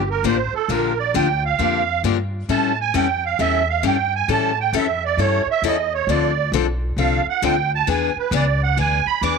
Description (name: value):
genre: acoustic string swing (jazz manouche)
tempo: 134 BPM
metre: 4/4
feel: swing 65% on 8ths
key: unclear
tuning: A4 = 438 Hz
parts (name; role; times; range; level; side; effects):
- musette accordion; melody; 0.0-9.4 s; A4 to D6; -20 LUFS; right 10 dB; none
- upright bass; bass; 0.0-9.4 s; G1 to A2; -24 LUFS; equal; none
- picked steel-string acoustic guitar; accompaniment; 0.2-9.3 s; D3 to A4; -22 LUFS; left 13 dB; none
room: moderate spring reverb, RT60 1.4 s, small room ambience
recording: 1960s-style stereo with parts hard left and right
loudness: -17 LUFS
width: side -5 dB against mid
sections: 0.0-9.4 A section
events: accordion solo 0.0-9.4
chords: 0.0 Bb6; 0.7 Gm7/Bb; 2.5 A7; 6.1 Dm7; 7.9 E7